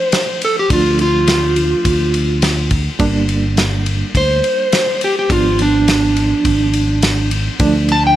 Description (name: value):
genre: straight-eighth soul blues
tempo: 104 BPM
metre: 4/4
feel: straight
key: unclear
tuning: A4 = 440 Hz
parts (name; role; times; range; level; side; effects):
- electric slide guitar; melody; 0.0-8.2 s; D4 to A5; -15 LUFS; right 1 dB; none
- reed electric piano; accompaniment; 0.0-8.2 s; F3 to D4; -22 LUFS; right 3 dB; tremolo
- warm soul drum kit; drums; 0.1-8.0 s; kick drum, ride cymbal, snare drum; -18 LUFS; left 1 dB; none
- fingered electric bass; bass; 0.7-8.2 s; G1 to D2; -18 LUFS; equal; none
room: studio ambience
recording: none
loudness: -12 LUFS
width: side -12 dB against mid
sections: 0.0-8.2 A section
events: electric slide guitar solo 0.0-8.2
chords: 0.0 Dm; 3.0 Gm; 5.3 G#dim7; 7.6 Dm